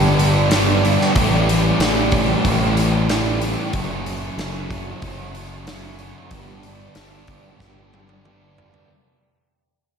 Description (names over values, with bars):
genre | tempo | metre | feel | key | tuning
rock, shoegaze and dream pop | 93 BPM | 4/4 | straight | G lydian | A4 = 440 Hz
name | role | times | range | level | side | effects
crunchy overdriven guitar | riff | 0.0-8.9 s | F#2 to G4 | -22 LUFS | right 7 dB | reverse reverb
thick fuzz guitar | riff | 0.0-8.9 s | F#2 to A3 | -22 LUFS | left 7 dB | distortion, wide subtle chorus
growling fingered electric bass | bass | 0.0-8.7 s | F#1 to A1 | -23 LUFS | equal | overdrive
big rock drum kit | drums | 0.2-8.9 s | hi-hat, kick drum, snare drum, toms | -23 LUFS | equal | none
room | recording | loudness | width
wet lush hall reverb, RT60 2.0 s, small room ambience | dreamy mix soaked in reverb | -16 LUFS | side -6 dB against mid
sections
0.0-8.9 A section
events
fade-out 0.0-8.9; drum fill 7.6-8.9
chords
0.0 G; 1.1 A7; 3.7 F#m; 6.3 G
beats
0.51 | 1.15 1.79 2.44 3.09 | 3.73 4.38 5.02 5.67 | 6.32 6.96 7.61 8.26